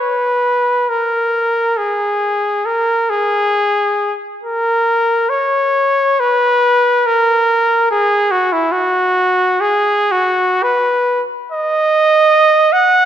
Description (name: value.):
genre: classical, free, expressive piece for unaccompanied trumpet.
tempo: 68 BPM.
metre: 4/4.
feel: uneven beats, rubato.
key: G# minor.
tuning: A4 = 437 Hz.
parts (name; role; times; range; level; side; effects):
clear trumpet; solo; 0.0-13.1 s; E4 to F#5; -12 LUFS; equal; none.
room: moderate concert hall reverb, RT60 1.8 s.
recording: none.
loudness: -12 LUFS.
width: side -10 dB against mid.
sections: 0.0-13.1 A section.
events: none.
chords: none.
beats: 0.00 | 0.90 1.78 2.67 3.57 | 4.45 5.32 6.21 7.08 | 7.91 8.73 9.62 10.64 | 11.51 12.33.